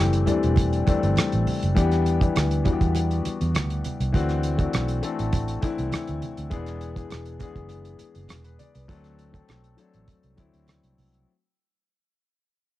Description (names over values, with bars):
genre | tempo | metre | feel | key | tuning
lush 1970s-style soul | 101 BPM | 4/4 | straight | unclear | A4 = 439 Hz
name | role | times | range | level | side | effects
warm concert grand piano | accompaniment | 0.0-11.3 s | E3 to D5 | -26 LUFS | left 5 dB | cassette tape, plate reverb
vintage muted fingered electric bass | bass | 0.0-11.2 s | E1 to E2 | -25 LUFS | right 1 dB | none
damped 70s drum kit | drums | 0.1-11.3 s | hi-hat, kick drum, rim click | -26 LUFS | right 1 dB | cassette tape
congas | percussion | 0.3-11.1 s | none | -33 LUFS | right 6 dB | none
room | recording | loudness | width
light reverb | home recording on cassette | -21 LUFS | side -15 dB against mid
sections
0.0-11.3 A section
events
fade-out 0.0-11.3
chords
0.0 Am7; 1.8 Em7; 4.1 D9; 6.5 E7; 8.9 D7